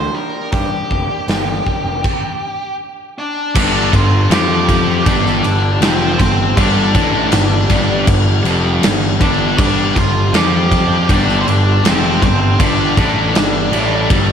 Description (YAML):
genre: quiet-loud alternative rock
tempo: 80 BPM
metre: 4/4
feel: straight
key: G minor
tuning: A4 = 440 Hz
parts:
  - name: octave-fuzz lead guitar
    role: melody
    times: 0.0-14.1 s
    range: C4 to G5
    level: -19 LUFS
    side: equal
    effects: distortion, slapback echo
  - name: electric guitar through a small old amp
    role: arpeggios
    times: 0.0-2.0 s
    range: G2 to G4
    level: -27 LUFS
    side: equal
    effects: slapback echo
  - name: fuzz picked electric bass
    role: bass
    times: 0.0-14.3 s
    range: F1 to G2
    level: -19 LUFS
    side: equal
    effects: overdrive
  - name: big rock drum kit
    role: drums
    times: 0.5-14.3 s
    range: crash cymbal, hi-hat, kick drum, snare drum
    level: -16 LUFS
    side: equal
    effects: none
  - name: thick fuzz guitar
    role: riff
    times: 3.5-14.3 s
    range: F2 to F4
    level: -19 LUFS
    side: left 6 dB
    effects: distortion, slapback echo
  - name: thick fuzz guitar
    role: riff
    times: 3.5-14.3 s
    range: F2 to F4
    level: -20 LUFS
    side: right 6 dB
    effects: distortion, slapback echo
  - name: clear studio string section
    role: sustained chords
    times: 3.6-14.3 s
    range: G3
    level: -28 LUFS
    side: equal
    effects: none
room: light reverb, small room ambience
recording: none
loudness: -12 LUFS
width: side -8 dB against mid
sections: 0.0-3.6 A section; 3.6-14.3 B section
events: stop 2.0-3.6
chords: 0.0 Gm7; 3.6 G5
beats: | 0.53 1.28 2.04 2.80 | 3.55 4.31 5.06 5.82 | 6.57 7.32 8.08 8.83 | 9.58 10.34 11.09 11.84 | 12.60 13.35 14.10